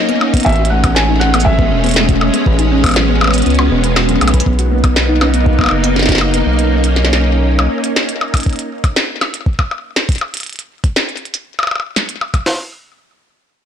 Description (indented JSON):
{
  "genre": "IDM",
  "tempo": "120 BPM",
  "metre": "4/4",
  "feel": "straight",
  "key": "unclear",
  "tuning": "A4 = 440 Hz",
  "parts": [
    { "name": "felt-muted upright piano", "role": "melody", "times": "0.0-3.9 s", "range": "D#5 to G#5", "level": "-20 LUFS", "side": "right 1 dB", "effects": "ping-pong delay" },
    { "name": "soft string machine", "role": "sustained chords", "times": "0.0-8.4 s", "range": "G#3 to D#4", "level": "-16 LUFS", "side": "right 1 dB", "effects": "ensemble chorus, vintage 12-bit sampler grit, sidechain pumping" },
    { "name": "thumb-piano-like synth pluck", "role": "arpeggios", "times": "0.0-6.4 s", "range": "F#3 to B4", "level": "-20 LUFS", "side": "left 3 dB", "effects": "chorus, ping-pong delay" },
    { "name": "glitchy drum kit", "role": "drums", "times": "0.1-12.4 s", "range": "hi-hat, percussion blips, shaker, snare drum", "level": "-16 LUFS", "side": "left 1 dB", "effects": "ping-pong delay" },
    { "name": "jungle sampler-style drum kit", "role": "drums", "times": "0.3-12.6 s", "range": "hi-hat, kick drum, snare drum", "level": "-14 LUFS", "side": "equal", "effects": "overdrive" },
    { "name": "round analog bass", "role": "bass", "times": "0.5-7.7 s", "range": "E1 to C#2", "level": "-15 LUFS", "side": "equal", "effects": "tube saturation" }
  ],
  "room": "light reverb",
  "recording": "blown-out, overdriven recording, overdrive",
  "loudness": "-11 LUFS",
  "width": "side -8 dB against mid",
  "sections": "0.0-4.5 A section; 4.5-12.5 B section; 12.5-13.7 C section",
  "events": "drum fill 4.2",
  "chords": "0.5 Amaj7; 4.5 Bmaj7; 8.5 N.C.",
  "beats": "| 0.46 0.96 1.46 1.96 | 2.46 2.96 3.46 3.96 | 4.46 4.96 5.46 5.96 | 6.46 6.96 7.46 7.96 | 8.46 8.96 9.46 9.96 | 10.46 10.96 11.46 11.96 | 12.46"
}